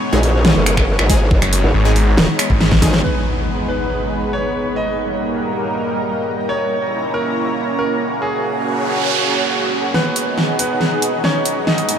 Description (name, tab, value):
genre	heavy wobble dubstep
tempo	139 BPM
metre	4/4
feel	half-time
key	G# minor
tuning	A4 = 443 Hz
part	lush unison pad	sustained chords	0.0-12.0 s	G2 to D#5	-21 LUFS	right 1 dB	chorus, phaser, sidechain pumping
part	granular cloud pad	texture	0.1-12.0 s	G3 to B5	-26 LUFS	equal	built-in reverb, lush chorus, sidechain pumping
part	supersaw stab	stabs	0.1-2.9 s	G#3 to G#4	-26 LUFS	left 1 dB	none
part	growl bass	bass	0.1-3.0 s	D#1 to A#1	-16 LUFS	equal	chorus, overdrive
part	dubstep drum kit	drums	0.2-12.0 s	finger snaps, hi-hat, snare drum	-19 LUFS	equal	overdrive, low-pass filter on snare, low-pass filter on hats, low-pass filter on room
part	electronic kick drum	drums	0.8-2.9 s	none	-16 LUFS	equal	overdrive
part	snarling distorted saw bass	bass	1.4-2.8 s	F#1 to G#1	-15 LUFS	equal	distortion, overdrive
part	bright concert grand piano	melody	3.0-12.0 s	B3 to D#5	-23 LUFS	right 1 dB	low-pass filter, analog delay
part	impact, noise sweep and riser	sound effects	3.0-4.8, 8.5-12.0 s	none	-23 LUFS	right 1 dB	none
room	moderate huge ambient reverb, RT60 8.2 s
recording	dreamy mix soaked in reverb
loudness	-15 LUFS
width	side -8 dB against mid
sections	0.0-3.0 A section; 3.0-9.9 B section; 9.9-12.0 C section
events	drop 0.0-3.0; drum fill 2.6-3.0, 9.9-12.0; impact 3.0-4.8; noise sweep 8.5-9.9; build-up 9.9-12.0; riser 9.9-12.0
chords	0.0 G#m; 4.8 D#/G; 6.5 A#dim; 8.2 F#; 9.9 G#m